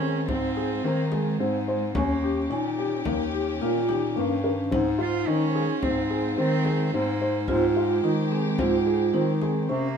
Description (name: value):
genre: contemporary instrumental, chamber music in an uneven meter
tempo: 108 BPM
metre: 5/4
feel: straight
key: Ab major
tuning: A4 = 441 Hz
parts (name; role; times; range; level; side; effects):
- warm cello; melody; 0.0-10.0 s; Ab3 to F4; -30 LUFS; right 6 dB; none
- vibraphone with soft mallets; second line; 0.0-9.8 s; C4 to F4; -27 LUFS; equal; none
- warm chamber string section; sustained chords; 0.0-10.0 s; Eb3 to C5; -35 LUFS; equal; none
- felt-muted upright piano; arpeggios; 0.0-9.8 s; Bb3 to C5; -29 LUFS; left 2 dB; none
- clear bass clarinet; bass; 0.0-10.0 s; Eb2 to Eb3; -28 LUFS; left 1 dB; none
- frame drum; percussion; 0.3-9.7 s; none; -33 LUFS; left 2 dB; none
room: light reverb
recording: minimal, uncompressed stereo recording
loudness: -22 LUFS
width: side -7 dB against mid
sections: 0.0-10.0 A section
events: none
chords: 0.0 Ab6; 2.0 Eb7; 4.7 Ab6; 7.5 Abmaj7